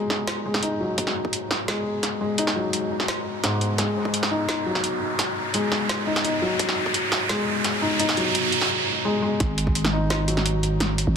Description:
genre	half-time drum and bass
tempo	171 BPM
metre	4/4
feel	half-time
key	unclear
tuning	A4 = 441 Hz
part	felt-muted upright piano	arpeggios	0.0-11.2 s	G#2 to D#4	-25 LUFS	left 2 dB	vintage 12-bit sampler grit, low-pass filter, digital delay
part	riser	sound effects	1.2-8.7 s	none	-28 LUFS	right 2 dB	none
part	drum and bass drum kit	drums	0.1-11.1 s	hi-hat, snare drum	-26 LUFS	right 1 dB	high-pass filter on hats, soft clipping on snare, high-pass filter on snare, high-pass filter on room
part	electronic kick drum	drums	1.0-1.3, 3.8-4.1, 6.6-6.9, 9.4-9.7 s	none	-27 LUFS	right 1 dB	high-pass filter on kick, high-pass filter on room
part	growling 808-style bass	bass	9.4-11.2 s	G#1	-23 LUFS	right 1 dB	none
room	moderate huge ambient reverb, RT60 7.5 s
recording	dense, heavily limited modern master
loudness	-21 LUFS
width	side -7 dB against mid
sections	0.0-9.4 A section; 9.4-11.2 B section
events	build-up 0.0-9.4; riser 1.2-8.7; break 8.7-9.4; drop 9.4-11.2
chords	0.0 G#5; 3.8 F#sus2; 9.4 G#5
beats	0.28 0.63 | 0.98 1.33 1.68 2.03 | 2.38 2.74 3.09 3.44 | 3.79 4.14 4.49 4.84 | 5.19 5.54 5.89 6.24 | 6.59 6.95 7.30 7.65 | 8.00 8.35 8.70 9.05 | 9.40 9.75 10.10 10.46 | 10.81 11.16

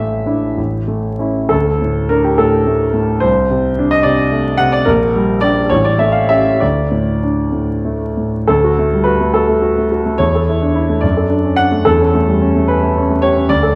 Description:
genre	classical, romantic character piece for solo piano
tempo	61-76 BPM (dotted quarters)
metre	6/8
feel	rubato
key	D major from 8.5 s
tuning	A4 = 437 Hz
part	clear concert grand piano	solo	0.0-13.8 s	A1 to F#5	-14 LUFS	equal	none
room	moderate recital hall reverb, RT60 1.6 s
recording	vinyl crackle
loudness	-14 LUFS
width	mono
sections	0.0-8.5 A section; 8.5-13.8 B section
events	none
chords	0.0 Asus4; 0.6 A; 1.5 D5; 3.2 D5/C; 4.9 Gm/Bb; 5.7 A7; 6.6 D5; 8.5 D; 10.2 A/E; 11.0 D/F#; 11.9 A7/E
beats	0.58 | 1.51 2.40 | 3.23 4.05 | 4.87 5.71 | 6.62 7.55 | 8.50 9.35 | 10.20 11.04 | 11.86 12.68 | 13.48

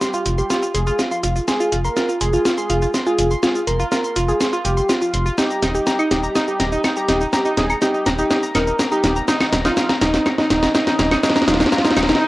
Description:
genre	melodic techno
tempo	123 BPM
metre	4/4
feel	straight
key	unclear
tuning	A4 = 440 Hz
part	fat analog lead	melody	0.0-12.2 s	Eb4 to Bb4	-22 LUFS	equal	chorus, cassette tape, tape echo
part	analog pluck	arpeggios	0.0-12.2 s	Eb4 to C6	-21 LUFS	right 1 dB	chorus, cassette tape, analog delay
part	techno drum kit	drums	0.0-12.2 s	claves, hi-hat, shaker, snare drum	-20 LUFS	equal	cassette tape
part	round analog bass	bass	0.3-12.1 s	Eb1 to F1	-23 LUFS	equal	none
part	riser	sound effects	8.3-12.3 s	none	-30 LUFS	left 1 dB	none
room	moderate spring reverb, RT60 1.3 s, digital ambience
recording	home recording on cassette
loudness	-16 LUFS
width	side -18 dB against mid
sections	0.0-12.3 A section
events	build-up 0.0-12.3; drum fill 0.0-12.2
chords	0.0 F5; 5.4 Eb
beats	0.01 0.50 0.99 | 1.48 1.97 2.45 2.94 | 3.43 3.92 4.40 4.89 | 5.38 5.87 6.36 6.84 | 7.33 7.82 8.31 8.79 | 9.28 9.77 10.26 10.75 | 11.23 11.72 12.21

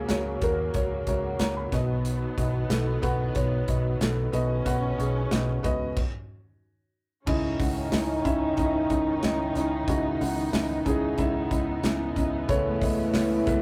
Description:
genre	piano-driven pop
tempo	92 BPM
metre	4/4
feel	straight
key	C# minor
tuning	A4 = 443 Hz
part	felt-muted upright piano	accompaniment	0.0-13.6 s	B2 to B5	-31 LUFS	equal	none
part	rich studio string section	sustained chords	0.0-13.6 s	C#3 to D#4	-36 LUFS	equal	none
part	vintage muted fingered electric bass	bass	0.0-13.6 s	B1 to D#2	-33 LUFS	equal	none
part	modern studio drum kit	drums	0.1-13.6 s	crash cymbal, hi-hat, kick drum, snare drum	-33 LUFS	equal	none
part	mellow French horn section	second line	7.3-13.6 s	D#3 to E4	-32 LUFS	equal	none
room	wet booth ambience, RT60 0.2 s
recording	rough rehearsal-room recording, tube saturation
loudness	-26 LUFS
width	mono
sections	0.0-7.3 A section; 7.3-13.6 B section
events	felt piano fill 0.7-2.0; stop 6.0-7.3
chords	0.0 F#/C#; 1.7 B; 7.3 C#madd9; 12.5 Aadd9/C#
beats	0.09 0.74 1.40 | 2.05 2.70 3.35 4.00 | 4.66 5.31 5.96 6.62 | 7.27 7.92 8.57 9.22 | 9.88 10.53 11.18 11.84 | 12.49 13.14

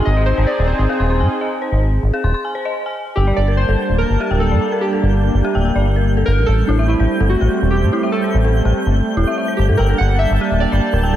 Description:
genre	IDM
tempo	145 BPM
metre	4/4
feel	straight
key	unclear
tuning	A4 = 440 Hz
part	warbly lo-fi synth keys	melody	0.0-11.0 s	D4 to F#5	-22 LUFS	equal	chorus, analog delay
part	warm analog pad	sustained chords	0.0-11.2 s	G3 to A5	-21 LUFS	right 2 dB	chorus, tremolo, vintage 12-bit sampler grit
part	deep acid bass	bass	0.1-11.2 s	D1 to A2	-15 LUFS	equal	none
part	dark detuned synth bell	arpeggios	0.2-11.2 s	E4 to C6	-24 LUFS	left 3 dB	chorus, analog delay
part	twinkling granular texture	texture	3.5-11.2 s	G6	-30 LUFS	right 1 dB	built-in reverb
room	light reverb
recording	none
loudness	-14 LUFS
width	side -12 dB against mid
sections	0.0-3.2 A section; 3.2-11.2 A section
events	break 2.3-3.2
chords	0.0 Ab; 3.2 Gmadd9; 6.5 Am7; 9.8 Gmadd9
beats	0.27 0.69 1.10 | 1.51 1.93 2.34 2.76 | 3.17 3.58 4.00 4.41 | 4.83 5.24 5.65 6.07 | 6.48 6.89 7.31 7.72 | 8.13 8.55 8.96 9.38 | 9.79 10.20 10.62 11.03

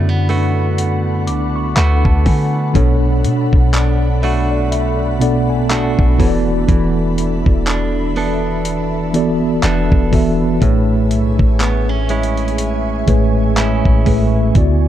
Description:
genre	contemporary R&B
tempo	61 BPM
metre	4/4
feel	swing 58% on 16ths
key	A major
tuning	A4 = 439 Hz
part	mellow tine electric piano	accompaniment	0.0-14.9 s	A2 to D6	-18 LUFS	equal	medium stereo tremolo
part	ethereal airy pad	sustained chords	0.0-14.9 s	D4 to D6	-25 LUFS	left 2 dB	ensemble chorus, built-in reverb
part	direct-recorded clean electric guitar	arpeggios	0.0-14.7 s	A2 to A4	-22 LUFS	right 4 dB	tape echo
part	clean 808-style bass	bass	0.0-14.9 s	E1 to D3	-18 LUFS	equal	none
part	dusty soul sampler-style drum kit	drums	0.3-14.8 s	handclaps, hi-hat, kick drum	-16 LUFS	equal	none
room	digital ambience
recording	dark, warm production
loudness	-13 LUFS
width	side -11 dB against mid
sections	0.0-14.9 A section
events	tine electric piano fill 3.7-6.7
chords	0.0 D6; 2.8 Bm7; 6.2 E7sus4; 10.6 Amaj7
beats	0.78 1.77 | 2.75 3.73 4.72 5.70 | 6.68 7.67 8.65 9.63 | 10.62 11.60 12.59 13.57 | 14.55

